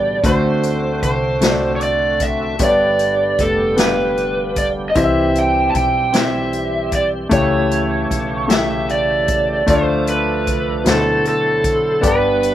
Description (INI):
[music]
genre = slow gospel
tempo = 51 BPM (dotted quarters)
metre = 6/8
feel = straight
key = unclear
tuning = A4 = 440 Hz
[part]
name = overdriven slide guitar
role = melody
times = 0.0-12.5 s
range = A4 to A5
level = -18 LUFS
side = right 1 dB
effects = none
[part]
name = clear concert grand piano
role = accompaniment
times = 0.0-12.5 s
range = G2 to G5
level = -19 LUFS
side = left 2 dB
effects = slapback echo
[part]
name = tonewheel organ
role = sustained chords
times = 0.0-12.5 s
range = C#3 to C5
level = -26 LUFS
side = right 2 dB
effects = fast rotary speaker, chorus vibrato
[part]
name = upright bass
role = bass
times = 0.0-12.5 s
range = F1 to D2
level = -26 LUFS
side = equal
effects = none
[part]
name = swinging big-band drum kit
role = drums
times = 0.2-12.5 s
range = hi-hat, kick drum, snare drum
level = -21 LUFS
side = left 1 dB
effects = none
[sound]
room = little or no reverb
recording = none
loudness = -14 LUFS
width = side -12 dB against mid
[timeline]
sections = 0.0-12.5 A section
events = none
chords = 0.2 D7; 2.6 G; 5.0 C; 7.3 A7; 9.7 Dm; 10.9 D13; 12.0 G